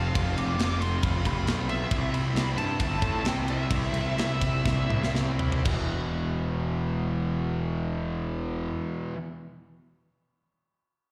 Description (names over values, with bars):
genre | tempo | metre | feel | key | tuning
heavy metal | 116-136 BPM | 4/4 | straight | unclear | A4 = 440 Hz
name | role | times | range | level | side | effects
high-gain lead guitar | melody | 0.0-5.1 s | E5 to D6 | -36 LUFS | equal | distortion, slapback echo, tape echo
distorted electric guitar | riff | 0.0-9.2 s | E2 to F4 | -35 LUFS | equal | distortion, slapback echo
fuzz picked electric bass | bass | 0.0-8.7 s | E1 to A2 | -31 LUFS | equal | overdrive
tight metal drum kit | drums | 0.2-5.8 s | crash cymbal, kick drum, ride cymbal, snare drum, toms | -32 LUFS | equal | none
room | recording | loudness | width
studio reverb | live gig heard through the venue's PA, recital hall reverb | -28 LUFS | mono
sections
0.0-5.6 A section; 5.6-9.8 B section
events
slowing down 1.9-5.6; drum fill 4.6-5.6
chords
0.0 F5; 1.9 C; 5.6 E5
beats
| 0.14 0.58 1.02 1.46 | 1.90 2.34 2.79 3.24 | 3.70 4.17 4.65 5.14 | 5.65 6.16 6.68 7.20 | 7.71 8.23 8.75